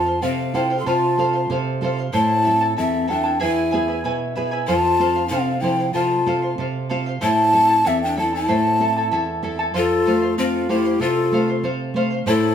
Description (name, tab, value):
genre	andean folk, Andean ensemble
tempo	95 BPM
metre	2/4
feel	straight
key	unclear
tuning	A4 = 440 Hz
part	mellow large quena	melody	0.0-12.5 s	F4 to C6	-20 LUFS	left 1 dB	none
part	breathy large pan pipes	second line	0.0-12.5 s	C4 to A4	-23 LUFS	left 3 dB	none
part	charango	accompaniment	0.0-12.5 s	E4 to A5	-24 LUFS	equal	none
part	nylon-string guitar	accompaniment	0.0-12.5 s	E2 to A4	-25 LUFS	right 2 dB	none
room	moderate stone room reverb, RT60 1.1 s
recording	band playing live in one room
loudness	-17 LUFS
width	side -8 dB against mid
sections	0.0-9.7 A section; 9.7-12.5 A section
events	none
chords	0.0 F; 2.1 Am; 3.4 E; 4.7 F; 7.2 Am; 9.7 F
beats	0.22 | 0.86 1.50 | 2.13 2.77 | 3.40 4.04 | 4.67 5.31 | 5.94 6.58 | 7.21 7.84 | 8.47 9.11 | 9.74 10.37 | 11.00 11.63 | 12.26